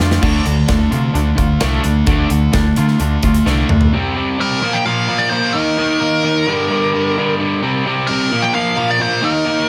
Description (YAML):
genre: quiet-loud alternative rock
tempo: 130 BPM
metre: 4/4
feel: straight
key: unclear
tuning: A4 = 442 Hz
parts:
  - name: twangy electric guitar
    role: arpeggios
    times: 0.0-3.9 s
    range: D3 to F4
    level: -29 LUFS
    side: equal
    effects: tremolo, plate reverb, analog delay
  - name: distorted electric guitar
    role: riff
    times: 0.0-9.7 s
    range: G2 to Eb4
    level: -19 LUFS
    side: equal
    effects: distortion
  - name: overdriven picked electric bass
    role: bass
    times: 0.0-3.8 s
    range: C2 to D3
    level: -20 LUFS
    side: equal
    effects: none
  - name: big rock drum kit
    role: drums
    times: 0.0-3.9 s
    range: crash cymbal, hi-hat, kick drum, snare drum, toms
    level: -21 LUFS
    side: equal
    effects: none
  - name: thick fuzz guitar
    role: riff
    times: 0.2-3.9 s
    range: D3 to D4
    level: -24 LUFS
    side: equal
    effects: distortion
  - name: nasal lead guitar with a parked wah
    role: melody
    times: 4.4-9.7 s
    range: Bb4 to G5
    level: -20 LUFS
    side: equal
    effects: overdrive, analog delay
room: light reverb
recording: none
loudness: -16 LUFS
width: mono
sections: 0.2-3.9 A section; 3.9-9.7 B section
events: drum fill 0.0, 3.5-3.9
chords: 0.2 Dm; 3.9 C5; 4.6 Bb5; 5.5 Eb5; 6.5 Gm; 7.6 C5; 8.3 Bb5